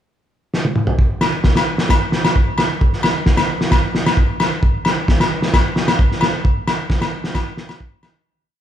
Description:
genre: highlife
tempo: 132 BPM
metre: 4/4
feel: straight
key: none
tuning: none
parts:
  - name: cloth-damped thuddy drum kit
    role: drums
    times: 0.5-8.1 s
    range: kick drum, snare drum, toms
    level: -15 LUFS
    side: equal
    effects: none
  - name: agogo bells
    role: percussion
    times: 1.2-8.1 s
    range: none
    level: -22 LUFS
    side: left 2 dB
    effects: none
room: moderate large studio reverb, RT60 1.5 s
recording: band playing live in one room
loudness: -15 LUFS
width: side -10 dB against mid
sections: 0.0-1.0 pickup bar; 1.0-8.3 groove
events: drum fill 0.5-1.0; fade-out 6.4-8.3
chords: none

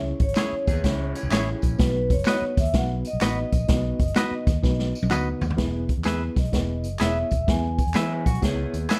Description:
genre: uptempo 1960s-style soul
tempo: 127 BPM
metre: 4/4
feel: swing 65% on 8ths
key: E major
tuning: A4 = 440 Hz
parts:
  - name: vibraphone with soft mallets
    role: melody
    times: 0.0-8.4 s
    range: B4 to G#5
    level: -32 LUFS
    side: equal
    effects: slapback echo
  - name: reed electric piano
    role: accompaniment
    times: 0.0-9.0 s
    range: B3 to F#5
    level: -33 LUFS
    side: equal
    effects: fast tremolo
  - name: vintage muted fingered electric bass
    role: bass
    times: 0.0-8.9 s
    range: D#1 to E3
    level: -30 LUFS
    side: equal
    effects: none
  - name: swinging big-band drum kit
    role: drums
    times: 0.2-9.0 s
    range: hi-hat, kick drum, snare drum, toms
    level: -26 LUFS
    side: equal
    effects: none
  - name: semi-hollow electric guitar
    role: stabs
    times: 0.4-9.0 s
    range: E4 to E5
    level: -31 LUFS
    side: equal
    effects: none
  - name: handclaps and tambourine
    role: percussion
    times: 0.4-9.0 s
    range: none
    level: -40 LUFS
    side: equal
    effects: none
  - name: electric guitar through a small old amp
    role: riff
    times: 0.7-1.8, 8.0-9.0 s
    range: E3 to G#4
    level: -36 LUFS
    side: equal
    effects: none
room: light reverb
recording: dark, warm production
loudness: -24 LUFS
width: mono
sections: 0.0-5.6 A section; 5.6-9.0 B section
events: drum fill 4.6-5.6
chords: 0.0 C#m; 1.8 B; 5.6 E

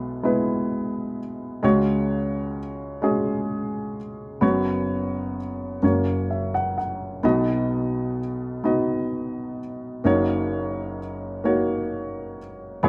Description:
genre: folk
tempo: 43 BPM (dotted quarters)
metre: 6/8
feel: straight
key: unclear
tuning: A4 = 445 Hz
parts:
  - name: dark upright piano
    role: solo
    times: 0.0-12.9 s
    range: F#1 to F#5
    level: -25 LUFS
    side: equal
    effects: none
room: moderate large studio reverb, RT60 0.8 s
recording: none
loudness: -25 LUFS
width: mono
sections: 0.0-12.9 A section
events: none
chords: 0.0 E/B; 1.6 C#sus4; 4.4 F#sus4; 5.8 F#; 7.2 B; 10.0 F#6

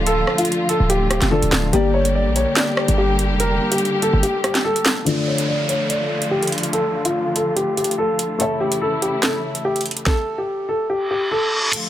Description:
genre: hip hop, drill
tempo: 144 BPM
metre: 4/4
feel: half-time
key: D harmonic minor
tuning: A4 = 440 Hz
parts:
  - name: felt-muted upright piano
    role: accompaniment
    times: 0.0-11.7 s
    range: D3 to E5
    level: -26 LUFS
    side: left 4 dB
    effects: low-pass filter
  - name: warm symphonic string section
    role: sustained chords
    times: 0.0-11.9 s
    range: C#3 to G4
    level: -25 LUFS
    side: equal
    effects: low-pass filter
  - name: hard-hitting 808-style bass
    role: bass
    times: 0.0-4.2 s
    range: D1 to Bb1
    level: -20 LUFS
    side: right 1 dB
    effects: none
  - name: dark concert grand piano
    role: melody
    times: 0.1-11.7 s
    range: F4 to D5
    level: -21 LUFS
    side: equal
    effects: low-pass filter
  - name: drill drum kit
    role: drums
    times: 0.1-11.8 s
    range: crash cymbal, handclaps, hi-hat, kick drum, rim click, snare drum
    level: -21 LUFS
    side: right 1 dB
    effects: none
  - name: downlifter and reverse cymbal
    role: sound effects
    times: 5.1-11.7 s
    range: none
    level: -25 LUFS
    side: right 1 dB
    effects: none
room: digital ambience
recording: none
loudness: -17 LUFS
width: side -12 dB against mid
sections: 0.0-5.1 A section; 5.1-11.7 B section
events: kick muted 4.2-5.1, 11.7; filter sweep 5.1-11.7; reverse cymbal 11.1-11.7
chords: 0.0 Dm; 1.7 Gm; 5.1 Dm; 8.4 A

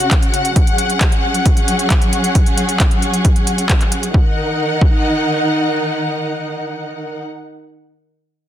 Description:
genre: uplifting trance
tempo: 134 BPM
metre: 4/4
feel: straight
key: Eb minor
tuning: A4 = 440 Hz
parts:
  - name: dark studio string section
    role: sustained chords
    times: 0.0-7.2 s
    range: Db3 to Gb5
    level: -18 LUFS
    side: equal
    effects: sidechain pumping
  - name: techno drum kit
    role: drums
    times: 0.0-4.1 s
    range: handclaps, hi-hat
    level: -20 LUFS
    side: equal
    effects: sidechain pumping on hats
  - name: electronic kick drum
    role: drums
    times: 0.1-4.9 s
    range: none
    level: -14 LUFS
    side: equal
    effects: none
room: light reverb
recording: dense, heavily limited modern master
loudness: -13 LUFS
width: side -11 dB against mid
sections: 0.0-4.1 A section; 4.1-7.7 B section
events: none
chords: 0.0 Dbsus4; 0.6 Gbsus2; 4.1 Ebm

